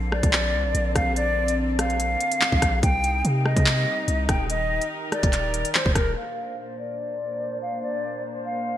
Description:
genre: hip hop, drill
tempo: 144 BPM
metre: 4/4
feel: half-time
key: unclear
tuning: A4 = 441 Hz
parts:
  - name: warm symphonic string section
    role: sustained chords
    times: 0.0-8.8 s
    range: Bb2 to C5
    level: -32 LUFS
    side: equal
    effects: low-pass filter
  - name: long sustained 808-style bass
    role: bass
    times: 0.0-6.2 s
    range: D1 to C3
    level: -25 LUFS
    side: equal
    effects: none
  - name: hollow concert flute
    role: melody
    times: 0.1-8.8 s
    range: Bb4 to G5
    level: -26 LUFS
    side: left 1 dB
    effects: low-pass filter, ping-pong delay
  - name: drill drum kit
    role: drums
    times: 0.1-6.1 s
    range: handclaps, hi-hat, kick drum, rim click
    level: -23 LUFS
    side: equal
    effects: gated reverb
room: moderate lush hall reverb, RT60 1.9 s, small room ambience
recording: bright 1980s-style digital production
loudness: -21 LUFS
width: side -12 dB against mid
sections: 0.0-6.2 A section; 6.2-8.8 B section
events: filter sweep 6.2-8.8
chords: 0.0 Bbadd9; 2.8 Cm7; 4.5 Eb; 6.2 Bbadd9

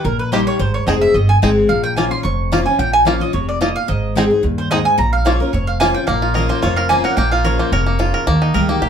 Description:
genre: bluegrass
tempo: 219 BPM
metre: 4/4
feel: swing 53% on 8ths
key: Bb dorian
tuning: A4 = 440 Hz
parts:
  - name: picked steel-string acoustic guitar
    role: accompaniment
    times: 0.0-8.9 s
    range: F2 to Ab4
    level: -19 LUFS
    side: left 3 dB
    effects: none
  - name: mandolin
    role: stabs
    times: 0.0-8.2 s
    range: Bb4 to Db6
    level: -19 LUFS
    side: right 3 dB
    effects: none
  - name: upright bass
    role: bass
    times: 0.0-8.9 s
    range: F1 to Eb2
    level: -19 LUFS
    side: right 1 dB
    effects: none
  - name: bluegrass banjo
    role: arpeggios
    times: 0.3-8.9 s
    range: Bb3 to Bb4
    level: -19 LUFS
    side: equal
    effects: none
room: wet small room reverb, RT60 0.5 s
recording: heard from further back in the room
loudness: -14 LUFS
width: side -8 dB against mid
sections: 0.0-6.1 A section; 6.1-8.9 A section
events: mandolin solo 0.0-8.9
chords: 0.0 Eb; 0.6 Ab; 1.7 Bbm; 3.9 Ab; 5.0 Bbm; 8.3 Eb

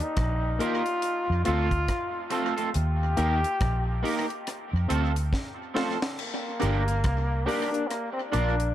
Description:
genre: roots reggae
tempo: 70 BPM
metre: 4/4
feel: swing 60% on 16ths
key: G minor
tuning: A4 = 442 Hz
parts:
  - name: bright trombone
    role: melody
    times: 0.0-8.7 s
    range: Bb3 to G4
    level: -30 LUFS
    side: left 1 dB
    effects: dub echo
  - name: deep reggae drum kit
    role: drums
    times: 0.0-8.7 s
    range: crash cymbal, hi-hat, kick drum, rim click, snare drum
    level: -32 LUFS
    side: equal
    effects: tape echo
  - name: vintage muted fingered electric bass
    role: bass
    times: 0.2-8.7 s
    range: G1 to F2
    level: -26 LUFS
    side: equal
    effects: none
  - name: electric guitar at the edge of break-up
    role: accompaniment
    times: 0.6-8.5 s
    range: A3 to D5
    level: -32 LUFS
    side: right 4 dB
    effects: analog chorus, dub echo
  - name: reed electric piano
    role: stabs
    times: 0.6-8.5 s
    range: A3 to Bb4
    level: -34 LUFS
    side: left 4 dB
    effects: fast tremolo
room: light reverb, small room ambience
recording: echo-heavy mix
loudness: -24 LUFS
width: side -12 dB against mid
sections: 0.0-6.2 A section; 6.2-8.7 B section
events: drum fill 5.3-6.2; trombone solo 6.2-8.7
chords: 0.0 Eb; 1.0 F; 2.7 Eb; 4.5 F; 6.2 Gm; 7.9 Bb

